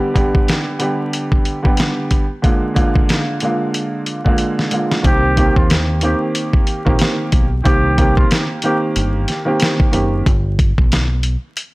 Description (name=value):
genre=hip hop, boom-bap hip-hop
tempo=92 BPM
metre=4/4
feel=swing 57% on 16ths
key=C minor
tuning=A4 = 442 Hz
part: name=warm upright piano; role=accompaniment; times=0.0-10.2 s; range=D3 to G4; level=-18 LUFS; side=right 1 dB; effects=cassette tape, high-pass filter, low-pass filter
part: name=dusty soul sampler-style drum kit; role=drums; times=0.2-11.7 s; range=hi-hat, kick drum, snare drum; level=-15 LUFS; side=equal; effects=none
part: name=deep dub fingered electric bass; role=bass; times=5.0-11.4 s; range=F#1 to Eb2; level=-18 LUFS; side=equal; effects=transformer saturation
part: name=trumpet with cup mute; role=melody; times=5.1-8.8 s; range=F4 to G4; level=-21 LUFS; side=equal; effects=high-pass filter, low-pass filter, analog delay
room=studio reverb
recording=dry, gritty hardware recording, vinyl crackle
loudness=-14 LUFS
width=side -22 dB against mid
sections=0.0-5.0 A section; 5.0-11.7 B section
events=break 0.0-5.0; drum fill 4.4-5.0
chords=0.0 G; 2.4 Bb7; 5.0 Cm7; 10.3 G